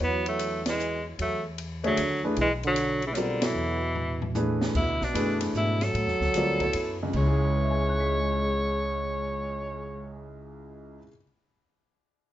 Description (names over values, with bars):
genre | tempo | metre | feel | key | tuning
modal jazz | 151 BPM | 3/4 | swing 66% on 8ths | unclear | A4 = 440 Hz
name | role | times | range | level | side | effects
bright tenor saxophone | melody | 0.0-10.3 s | C#3 to C#5 | -29 LUFS | equal | none
trombone with bucket mute | second line | 0.0-10.3 s | A2 to G#3 | -33 LUFS | right 2 dB | none
warm upright piano | accompaniment | 0.0-11.2 s | C#2 to B6 | -31 LUFS | equal | none
upright bass | bass | 0.0-11.0 s | B1 to A2 | -31 LUFS | left 1 dB | none
open jazz drum kit | drums | 0.3-7.3 s | crash cymbal, hi-hat, kick drum, ride cymbal, snare drum, toms | -35 LUFS | equal | none
room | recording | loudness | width
moderate studio reverb, RT60 0.8 s | nothing above 7.8 kHz | -24 LUFS | side -13 dB against mid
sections
0.0-4.8 A section; 4.8-7.1 B section; 7.1-9.5 C section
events
band accent 0.6, 3.4; drum fill 4.0-4.8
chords
0.0 E9sus4; 7.1 C#m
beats
0.39 0.78 | 1.18 1.58 1.98 | 2.37 2.77 3.17 | 3.56 3.96 4.36 | 4.75 5.15 5.55 | 5.95 6.34 6.74 | 7.14 7.54 7.93 | 8.33 8.73 9.13